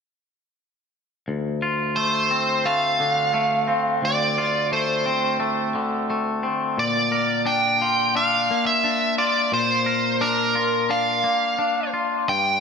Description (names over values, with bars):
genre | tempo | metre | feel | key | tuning
rock | 87 BPM | 4/4 | straight | D minor | A4 = 440 Hz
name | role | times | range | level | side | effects
twangy electric guitar | arpeggios | 1.3-12.6 s | D2 to Bb4 | -24 LUFS | left 3 dB | spring reverb, slapback echo, digital delay
nasal lead guitar with a parked wah | melody | 2.0-12.6 s | Bb4 to G5 | -20 LUFS | right 1 dB | overdrive, slapback echo, digital delay
room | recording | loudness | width
moderate lush hall reverb, RT60 2.4 s | big arena sound | -19 LUFS | side -6 dB against mid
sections
1.3-12.6 A section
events
none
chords
1.3 Dm7; 6.8 Bb